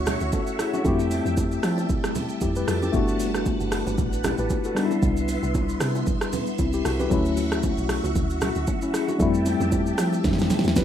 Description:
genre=amapiano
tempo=115 BPM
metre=4/4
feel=swing 55% on 16ths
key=unclear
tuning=A4 = 441 Hz
part: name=barky tine electric piano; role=accompaniment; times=0.0-10.8 s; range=F#3 to B4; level=-25 LUFS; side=left 3 dB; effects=medium stereo tremolo
part: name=phased string machine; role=sustained chords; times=0.0-10.8 s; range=G3 to C#6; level=-32 LUFS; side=right 1 dB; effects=ensemble chorus, phaser, sidechain pumping
part: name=deep log drum bass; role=bass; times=0.0-10.8 s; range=F#1 to F3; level=-27 LUFS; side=right 1 dB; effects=none
part: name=deep house drum kit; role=drums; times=0.1-10.8 s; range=hi-hat, kick drum, rim click, shaker, snare drum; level=-26 LUFS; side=right 1 dB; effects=none
part: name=bongos and congas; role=percussion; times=0.1-10.8 s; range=none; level=-33 LUFS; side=right 6 dB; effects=none
room=light reverb, digital ambience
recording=rough home demo mix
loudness=-21 LUFS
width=side -10 dB against mid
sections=0.0-10.8 A section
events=drum fill 10.2-10.8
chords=0.0 Dmaj9; 0.9 Fmaj9; 2.9 Gmaj9; 4.8 Cmaj9; 7.1 Dmaj9; 9.2 Fmaj9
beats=0.33 | 0.85 1.37 1.90 2.42 | 2.94 3.46 3.98 4.50 | 5.03 5.55 6.07 6.59 | 7.11 7.63 8.16 8.68 | 9.20 9.72 10.24 10.76

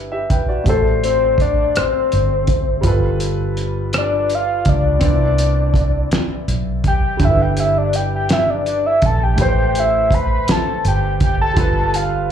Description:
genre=slow six-eight R&B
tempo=55 BPM (dotted quarters)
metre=6/8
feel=straight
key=G major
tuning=A4 = 441 Hz
part: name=warm concert grand piano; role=accompaniment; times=0.0-12.3 s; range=G3 to G5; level=-24 LUFS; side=left 1 dB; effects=plate reverb, slapback echo
part: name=vintage muted fingered electric bass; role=bass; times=0.0-12.3 s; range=G1 to C#2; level=-19 LUFS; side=right 1 dB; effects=none
part: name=cloth-damped thuddy drum kit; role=drums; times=0.3-12.1 s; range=hi-hat, kick drum, rim click, snare drum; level=-19 LUFS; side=right 1 dB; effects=none
part: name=soft octave-layered synth lead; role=melody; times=0.7-12.3 s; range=A4 to B5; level=-18 LUFS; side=left 2 dB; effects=chorus, plate reverb, slapback echo, tape echo
room=light reverb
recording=live gig heard through the venue's PA, club reverb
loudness=-14 LUFS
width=side -8 dB against mid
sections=0.0-12.3 A section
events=soft synth lead solo 0.0-12.3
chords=0.0 G6; 0.7 Am7; 2.8 G9; 5.0 Cmaj9; 7.2 G6; 9.4 Am9; 11.6 G9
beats=| 0.66 1.75 | 2.84 3.93 | 5.02 6.12 | 7.21 8.30 | 9.39 10.48 | 11.57

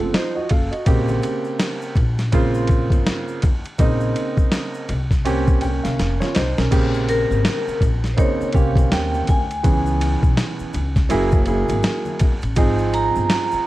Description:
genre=hip hop, jazz-hop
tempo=82 BPM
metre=4/4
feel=swing 60% on 16ths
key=Bb dorian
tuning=A4 = 437 Hz
part: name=warm upright piano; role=accompaniment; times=0.0-13.7 s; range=Db3 to G5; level=-22 LUFS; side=right 2 dB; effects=none
part: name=upright bass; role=bass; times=0.0-13.6 s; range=F1 to Eb2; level=-22 LUFS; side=equal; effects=none
part: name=boom bap sampler-style drum kit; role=drums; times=0.1-13.5 s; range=crash cymbal, hi-hat, kick drum, ride cymbal, snare drum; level=-20 LUFS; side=equal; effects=vintage 12-bit sampler grit
part: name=maracas and congas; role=percussion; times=0.9-13.7 s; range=none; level=-35 LUFS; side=left 4 dB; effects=none
part: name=vibraphone with medium mallets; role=melody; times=7.1-13.6 s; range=Bb4 to Bb5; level=-24 LUFS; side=equal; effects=analog delay
room=light reverb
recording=dark, warm production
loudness=-17 LUFS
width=side -16 dB against mid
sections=0.0-6.7 A section; 6.7-13.7 B section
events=drum fill 6.0-6.7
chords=0.0 F7b9; 0.9 Bbm69; 9.6 Dbm7; 11.1 Gb9; 12.6 Ab6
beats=0.13 | 0.86 1.60 2.33 3.06 | 3.79 4.52 5.25 5.99 | 6.72 7.45 8.18 8.91 | 9.64 10.38 11.11 11.84 | 12.57 13.30

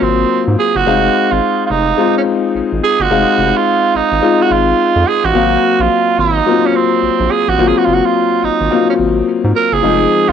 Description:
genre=R&B, new jack swing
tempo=107 BPM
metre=4/4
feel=swing 63% on 16ths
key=unclear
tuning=A4 = 439 Hz
part: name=raspy tenor saxophone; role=melody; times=0.0-10.3 s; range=C4 to Bb4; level=-14 LUFS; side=right 8 dB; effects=cassette tape
part: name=clear concert grand piano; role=accompaniment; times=0.0-10.3 s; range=F3 to F5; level=-14 LUFS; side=left 7 dB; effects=cassette tape
part: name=round analog bass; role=bass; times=0.0-10.3 s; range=F1 to Ab2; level=-18 LUFS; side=equal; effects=none
room=light reverb, small room reverb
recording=home recording on cassette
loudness=-10 LUFS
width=side -8 dB against mid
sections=0.0-10.3 A section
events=none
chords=0.0 Ab13; 0.9 Fm7; 5.3 Ab13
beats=0.29 | 0.86 1.42 1.98 2.54 | 3.10 3.66 4.22 4.78 | 5.34 5.90 6.46 7.02 | 7.58 8.14 8.71 9.27 | 9.83

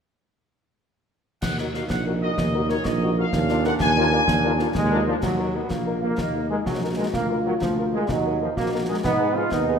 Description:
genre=military-style march for wind band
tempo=126 BPM (dotted quarters)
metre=6/8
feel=straight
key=Eb minor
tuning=A4 = 440 Hz
part: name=dark trumpet section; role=melody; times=1.4-9.7 s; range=Bb4 to Ab5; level=-26 LUFS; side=left 1 dB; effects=none
part: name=clear trombone section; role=sustained chords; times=1.4-9.8 s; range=Bb2 to F4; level=-27 LUFS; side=right 1 dB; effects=none
part: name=mellow tuba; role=bass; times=1.4-9.8 s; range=Bb1 to Ab2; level=-25 LUFS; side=right 3 dB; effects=none
part: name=concert snare drum, clash cymbals and concert bass drum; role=drums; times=1.4-9.7 s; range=none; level=-30 LUFS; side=left 1 dB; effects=none
part: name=warm French horn section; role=accompaniment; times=1.6-9.7 s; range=D4 to Cb5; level=-29 LUFS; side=left 5 dB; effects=none
part: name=warm euphonium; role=second line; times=5.2-9.8 s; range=Cb4 to Gb4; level=-27 LUFS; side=equal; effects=none
room=moderate scoring stage reverb, RT60 1.9 s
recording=minimal, uncompressed stereo recording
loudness=-20 LUFS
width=side -7 dB against mid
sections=1.4-5.2 A section; 5.2-9.8 B section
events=none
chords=1.4 Ebm; 3.3 Bb7/Eb; 5.2 Ebm; 7.1 Bb/D; 8.1 Ebm; 9.0 Abm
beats=| 1.43 1.90 | 2.38 2.85 | 3.33 3.81 | 4.28 4.76 | 5.23 5.71 | 6.19 6.66 | 7.14 7.62 | 8.09 8.57 | 9.05 9.52

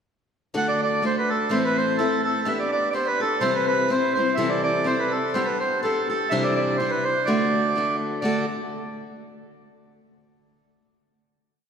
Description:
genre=celtic folk, Celtic polka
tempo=125 BPM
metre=2/4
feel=swing 54% on 8ths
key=D mixolydian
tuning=A4 = 440 Hz
part: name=picked steel-string acoustic guitar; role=accompaniment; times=0.5-8.4 s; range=A2 to C5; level=-24 LUFS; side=left 2 dB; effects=none
part: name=accordion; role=melody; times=0.6-8.5 s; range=A4 to F#5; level=-23 LUFS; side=right 2 dB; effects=none
room=wet church reverb, RT60 2.7 s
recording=recorded in a church or concert hall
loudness=-20 LUFS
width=side -7 dB against mid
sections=0.5-8.2 A section; 8.2-9.2 final chord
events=none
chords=0.5 D; 1.5 Am; 2.5 G/B; 3.4 C; 4.4 C6; 5.3 Gadd9; 6.3 Cadd9; 7.3 D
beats=| 0.54 1.02 | 1.50 1.98 | 2.46 2.94 | 3.42 3.90 | 4.38 4.86 | 5.34 5.83 | 6.31 6.79 | 7.27 7.75 | 8.23

